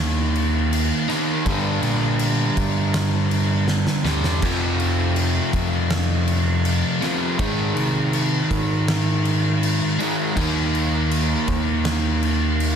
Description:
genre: quiet-loud alternative rock.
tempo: 81 BPM.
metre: 4/4.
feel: straight.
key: unclear.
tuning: A4 = 440 Hz.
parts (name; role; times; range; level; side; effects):
crunchy overdriven guitar; riff; 0.0-12.8 s; F2 to Eb4; -22 LUFS; right 1 dB; none.
overdriven picked electric bass; bass; 0.0-12.8 s; D2 to C3; -23 LUFS; equal; none.
oversized low-tuned drum kit; drums; 0.4-12.8 s; crash cymbal, kick drum, snare drum; -24 LUFS; equal; none.
room: light reverb.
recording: dense, heavily limited modern master.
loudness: -18 LUFS.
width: side -7 dB against mid.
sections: 0.0-12.8 A section.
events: drum fill 3.7-4.4.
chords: 0.0 Eb5; 1.5 Gm; 4.4 F5; 7.4 Ab; 10.4 Eb5.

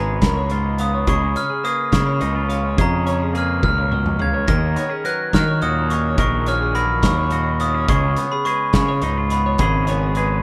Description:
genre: math rock and midwest emo.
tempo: 70 BPM (dotted quarters).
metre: 6/8.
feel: straight.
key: unclear.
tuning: A4 = 440 Hz.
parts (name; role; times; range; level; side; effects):
glockenspiel with brass mallets; melody; 0.0-10.4 s; A#5 to A#6; -24 LUFS; equal; none.
twangy electric guitar; accompaniment; 0.0-10.4 s; G#2 to A#4; -29 LUFS; equal; none.
twelve-string electric guitar; arpeggios; 0.0-10.4 s; G#4 to E#5; -33 LUFS; equal; none.
fuzz picked electric bass; bass; 0.0-10.4 s; G#1 to D#3; -23 LUFS; equal; overdrive.
loose indie drum kit; drums; 0.2-10.3 s; hi-hat, kick drum, snare drum, toms; -24 LUFS; equal; none.
room: studio ambience.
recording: rough home demo mix.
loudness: -19 LUFS.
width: mono.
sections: 0.0-10.4 A section.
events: drum fill 3.6-4.5.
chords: 0.0 C#7; 1.1 A#m7/C#; 4.5 D#m7; 7.9 C#7.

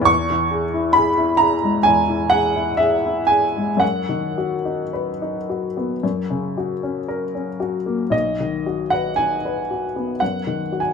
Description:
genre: classical, romantic nocturne for solo piano.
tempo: 53-70 BPM.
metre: 4/4.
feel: rubato.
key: B major.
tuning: A4 = 440 Hz.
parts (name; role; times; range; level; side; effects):
warm upright piano; solo; 0.0-10.9 s; B1 to C#6; -18 LUFS; equal; none.
room: moderate large studio reverb, RT60 0.9 s.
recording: minimal, uncompressed stereo recording.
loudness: -18 LUFS.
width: side -6 dB against mid.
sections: 0.0-8.1 A section; 8.1-10.9 B section.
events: none.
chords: 0.1 C#m/E; 3.8 B/F#; 6.0 F#; 8.1 B.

